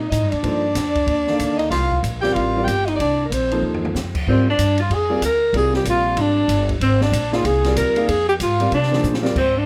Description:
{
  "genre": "modal jazz",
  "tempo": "188 BPM",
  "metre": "4/4",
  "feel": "swing 62% on 8ths",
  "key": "C dorian, F dorian from 4.3 s",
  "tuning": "A4 = 440 Hz",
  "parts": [
    { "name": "breathy tenor saxophone", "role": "melody", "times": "0.0-9.7 s", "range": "Bb3 to Bb4", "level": "-23 LUFS", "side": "equal", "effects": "none" },
    { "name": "breathy alto saxophone", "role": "second line", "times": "0.0-9.7 s", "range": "C4 to G5", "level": "-26 LUFS", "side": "equal", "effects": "none" },
    { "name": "upright bass", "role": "bass", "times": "0.0-9.7 s", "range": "G1 to C3", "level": "-25 LUFS", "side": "equal", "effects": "none" },
    { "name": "open jazz drum kit", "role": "drums", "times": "0.1-9.4 s", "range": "crash cymbal, hi-hat, kick drum, ride cymbal, snare drum, toms", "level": "-30 LUFS", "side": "equal", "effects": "none" },
    { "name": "dark upright piano", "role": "accompaniment", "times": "0.4-9.3 s", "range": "Eb3 to F5", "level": "-27 LUFS", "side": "equal", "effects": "none" }
  ],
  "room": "light reverb",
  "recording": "none",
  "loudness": "-19 LUFS",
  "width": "mono",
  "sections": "0.0-4.3 A section; 4.3-9.7 B section",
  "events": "drum fill 3.6-3.9, 9.0-9.4",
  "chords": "0.0 Cm11; 4.3 Fm69",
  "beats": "0.11 | 0.43 0.75 1.07 1.39 | 1.71 2.03 2.35 2.67 | 2.99 3.31 3.62 3.94 | 4.26 4.58 4.90 5.22 | 5.54 5.85 6.17 6.49 | 6.81 7.13 7.45 7.76 | 8.08 8.40 8.72 9.04 | 9.36"
}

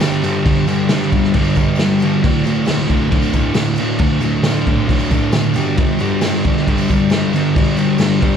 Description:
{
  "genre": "garage rock duo or trio",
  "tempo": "135 BPM",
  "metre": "4/4",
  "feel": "straight",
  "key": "unclear",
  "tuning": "A4 = 440 Hz",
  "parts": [
    { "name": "thick fuzz guitar", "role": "riff", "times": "0.0-8.4 s", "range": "D2 to G3", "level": "-15 LUFS", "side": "equal", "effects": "distortion" },
    { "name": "vintage drum kit", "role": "drums", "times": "0.0-8.4 s", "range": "crash cymbal, kick drum, snare drum", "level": "-18 LUFS", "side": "equal", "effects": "none" },
    { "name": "tambourine", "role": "percussion", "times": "0.0-8.4 s", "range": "none", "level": "-38 LUFS", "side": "left 3 dB", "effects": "none" }
  ],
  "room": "moderate large studio reverb, RT60 0.9 s",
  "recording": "band playing live in one room, cassette tape",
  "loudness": "-13 LUFS",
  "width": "side -8 dB against mid",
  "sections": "0.0-8.4 A section",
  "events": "none",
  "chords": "0.0 G5; 2.2 D5; 5.6 G5",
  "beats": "0.01 | 0.46 0.90 1.34 1.78 | 2.23 2.67 3.11 3.56 | 4.00 4.44 4.88 5.33 | 5.77 6.22 6.66 7.10 | 7.55 7.99"
}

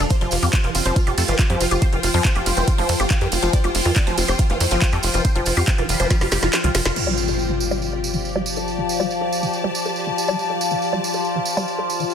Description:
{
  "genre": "psychedelic trance",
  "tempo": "140 BPM",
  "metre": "4/4",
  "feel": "straight",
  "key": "unclear",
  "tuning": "A4 = 439 Hz",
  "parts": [
    { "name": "dense compressed supersaw", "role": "melody", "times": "0.0-6.9 s", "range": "F4 to D5", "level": "-26 LUFS", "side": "right 1 dB", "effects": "phaser, sidechain pumping, ping-pong delay" },
    { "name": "overtone-sweeping drone", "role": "sustained chords", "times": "0.0-12.1 s", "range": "F3 to F4", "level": "-26 LUFS", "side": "left 3 dB", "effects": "chorus, built-in reverb, sidechain pumping" },
    { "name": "woody wave-folded pluck", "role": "riff", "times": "0.0-12.1 s", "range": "E3 to A4", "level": "-26 LUFS", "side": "moving between left 5 dB and right 5 dB", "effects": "chorus, auto-pan, cassette tape, sidechain pumping, ping-pong delay" },
    { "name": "tight sequencer bass", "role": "bass", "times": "0.0-6.9 s", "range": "F1 to F2", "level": "-22 LUFS", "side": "equal", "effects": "none" },
    { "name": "garage drum kit", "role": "drums", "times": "0.0-7.0 s", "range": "crash cymbal, handclaps, hi-hat, ride cymbal, snare drum", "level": "-24 LUFS", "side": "right 2 dB", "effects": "overdrive" },
    { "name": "tambourine", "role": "percussion", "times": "0.0-12.1 s", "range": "none", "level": "-29 LUFS", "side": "right 6 dB", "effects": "none" },
    { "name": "clear studio string section", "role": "texture", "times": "0.0-12.1 s", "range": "F4 to A5", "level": "-28 LUFS", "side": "left 3 dB", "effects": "sidechain pumping" },
    { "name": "electronic kick drum", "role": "drums", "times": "0.1-6.2 s", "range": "none", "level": "-19 LUFS", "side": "equal", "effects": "overdrive" },
    { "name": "metallic wobble bass", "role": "second line", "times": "0.7-6.5 s", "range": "F3 to C4", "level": "-35 LUFS", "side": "left 4 dB", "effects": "none" },
    { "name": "impact", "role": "sound effects", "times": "7.0-8.7 s", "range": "none", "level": "-27 LUFS", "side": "equal", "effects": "none" }
  ],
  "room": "light reverb, digital ambience",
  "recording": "dense, heavily limited modern master",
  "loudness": "-17 LUFS",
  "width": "side -8 dB against mid",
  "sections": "0.0-7.0 A section; 7.0-12.1 B section",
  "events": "drop 0.0-7.0; drum fill 6.1-7.0; kick drops out 6.5-7.0; band accent 6.9; impact 7.0-8.7; filter sweep on synth drone 7.0-12.1",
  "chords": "0.1 F5; 7.0 G5",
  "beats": "| 0.10 0.53 0.96 1.39 | 1.82 2.25 2.68 3.10 | 3.53 3.96 4.39 4.82 | 5.25 5.68 6.11 6.53 | 6.96 7.39 7.82 8.25 | 8.68 9.11 9.53 9.96 | 10.39 10.82 11.25 11.68 | 12.11"
}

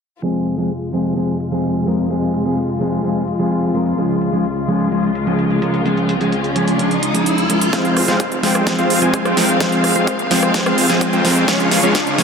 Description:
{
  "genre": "EDM, festival progressive house",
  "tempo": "128 BPM",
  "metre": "4/4",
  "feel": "straight",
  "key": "F minor",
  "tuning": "A4 = 439 Hz",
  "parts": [
    { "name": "mellow electric guitar", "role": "accompaniment", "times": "0.2-12.2 s", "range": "F3 to Bb4", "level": "-18 LUFS", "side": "equal", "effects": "sidechain pumping, tape echo" },
    { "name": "dark chamber string section", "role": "sustained chords", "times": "0.2-12.2 s", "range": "Db2 to F5", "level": "-22 LUFS", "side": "left 2 dB", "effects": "sidechain pumping, low-pass filter" },
    { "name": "big-room dance drum kit", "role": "drums", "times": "0.2-12.2 s", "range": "hi-hat, rim click, snare drum", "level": "-21 LUFS", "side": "right 2 dB", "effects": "high-pass filter on hats, high-pass filter on snare" },
    { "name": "riser", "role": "sound effects", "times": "5.2-12.2 s", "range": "none", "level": "-24 LUFS", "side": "equal", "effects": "none" },
    { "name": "supersaw chords", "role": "riff", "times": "7.7-12.2 s", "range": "Ab3 to Ab5", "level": "-17 LUFS", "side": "right 1 dB", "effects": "sidechain pumping, low-pass filter, tape echo" },
    { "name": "detuned saw bass", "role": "bass", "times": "7.7-12.2 s", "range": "F1 to F2", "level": "-27 LUFS", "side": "equal", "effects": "none" },
    { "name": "electronic kick drum", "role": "drums", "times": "7.7-12.0 s", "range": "none", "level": "-21 LUFS", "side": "equal", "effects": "high-pass filter on kick" }
  ],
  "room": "moderate huge ambient reverb, RT60 7.2 s",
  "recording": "dense, heavily limited modern master, low-pass filter",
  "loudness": "-14 LUFS",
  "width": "side -6 dB against mid",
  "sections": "0.2-7.7 A section; 7.7-12.2 B section",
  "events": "filter sweep 0.2-7.7; riser 5.2-7.7; build-up 7.7-12.2; drum fill 7.7-12.2; filter sweep on supersaw synth 7.7-12.2",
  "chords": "0.2 Fm; 4.0 Db; 7.7 Fm; 11.5 Db",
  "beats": "| 0.23 0.70 1.17 1.64 | 2.10 2.57 3.04 3.51 | 3.98 4.45 4.92 5.39 | 5.86 6.32 6.79 7.26 | 7.73 8.20 8.67 9.14 | 9.61 10.07 10.54 11.01 | 11.48 11.95"
}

